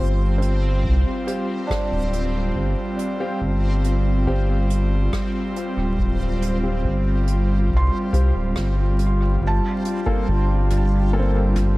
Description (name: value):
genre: ambient dub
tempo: 70 BPM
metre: 4/4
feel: straight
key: unclear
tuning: A4 = 440 Hz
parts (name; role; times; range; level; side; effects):
- airy breathy pad; sustained chords; 0.0-11.8 s; G3 to A4; -25 LUFS; equal; chorus
- felt-muted upright piano; arpeggios; 0.0-11.8 s; C4 to C6; -32 LUFS; right 2 dB; vintage 12-bit sampler grit, dub echo
- dark upright piano; stabs; 0.0-11.4 s; Bb3 to A4; -32 LUFS; left 2 dB; dub echo
- round analog bass; bass; 0.0-11.8 s; D1 to C2; -20 LUFS; equal; none
- backwards swelling texture; texture; 0.0-11.8 s; G3 to C5; -34 LUFS; right 1 dB; built-in reverb
- soft brush drum kit; drums; 0.4-11.7 s; hi-hat, rim click, toms; -34 LUFS; equal; dub echo
- electronic kick drum; drums; 0.8-11.7 s; none; -27 LUFS; equal; none
room: little or no reverb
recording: vinyl crackle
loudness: -18 LUFS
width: side -19 dB against mid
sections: 0.0-9.4 A section; 9.4-11.8 B section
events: none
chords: 0.0 G7(no3); 9.4 Gm7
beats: 0.85 1.70 | 2.56 3.42 4.28 5.13 | 5.99 6.85 7.70 8.56 | 9.42 10.28 11.13